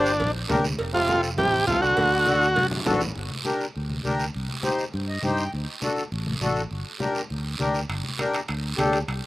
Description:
latin, cumbia; 203 BPM; 4/4; straight; G harmonic minor from 3.2 s; A4 = 438 Hz
combo organ; melody; 0.0-2.7 s; D4 to G4; -21 LUFS; equal
bright trombone; second line; 0.0-2.7 s; Bb2 to D3; -30 LUFS; right 3 dB
accordion; accompaniment; 0.0-9.0 s; C4 to G5; -27 LUFS; left 2 dB
fingered electric bass; bass; 0.0-9.2 s; F1 to G2; -29 LUFS; equal
guiro; percussion; 0.1-9.3 s; -34 LUFS; right 4 dB
congas; percussion; 0.2-9.2 s; -32 LUFS; left 1 dB
cowbell and timbales; percussion; 0.2-2.7, 7.9-9.2 s; -32 LUFS; right 3 dB; slapback echo
little or no reverb; recorded outdoors, with no room sound; -22 LUFS; side -17 dB against mid
0.0-3.2 A section; 3.2-9.3 B section
drum fill 2.6-3.2; accordion fill 4.9-5.5
0.0 Gm; 0.8 F; 2.0 D; 3.2 Gm; 4.3 Cm; 5.5 D; 6.7 Gm

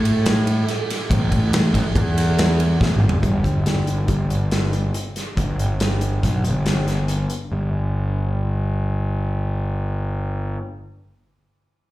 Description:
math rock and midwest emo; 140 BPM; 5/4; straight; A4 = 440 Hz
fuzz picked electric bass; bass; 0.0-10.6 s; G1 to A2; -19 LUFS; equal; overdrive
modern studio drum kit; drums; 0.1-7.4 s; hi-hat, kick drum, ride cymbal, snare drum, toms; -22 LUFS; equal
little or no reverb; live gig heard through the venue's PA, club reverb; -18 LUFS; side -16 dB against mid
0.0-3.2 A section; 3.2-7.5 B section; 7.5-11.8 C section
drum fill 2.8-3.2

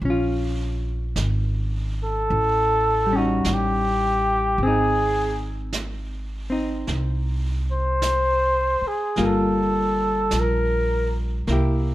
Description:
jazz ballad; 52 BPM; 4/4; swing 68% on 8ths; A4 = 440 Hz
upright bass; bass; 0.0-11.9 s; G1 to C2; -25 LUFS; equal
vintage brush drum kit; drums; 0.0-11.9 s; brushed snare drum, hi-hat, snare drum; -35 LUFS; right 4 dB
hollow-body jazz guitar; accompaniment; 0.1-11.9 s; G3 to G4; -26 LUFS; left 1 dB
trumpet with bucket mute; melody; 2.0-11.1 s; Gb4 to C5; -21 LUFS; equal
light reverb; minimal, uncompressed stereo recording; -20 LUFS; side -15 dB against mid
0.0-11.9 A section
muted trumpet solo 0.0-11.9
0.0 Bbm7; 2.3 A7#11; 4.6 Ab; 9.2 Gm9

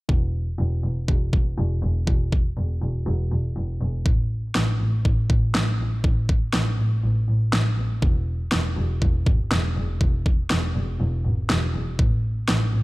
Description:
synth-pop; 121 BPM; 4/4; straight; E major; A4 = 440 Hz
warm double bass; bass; 0.1-12.8 s; E1 to A1; -23 LUFS; equal
pop drum kit; drums; 0.1-12.6 s; kick drum, snare drum; -22 LUFS; equal; overdrive
little or no reverb; -20 LUFS; side -21 dB against mid
0.1-8.0 A section; 8.0-12.8 B section

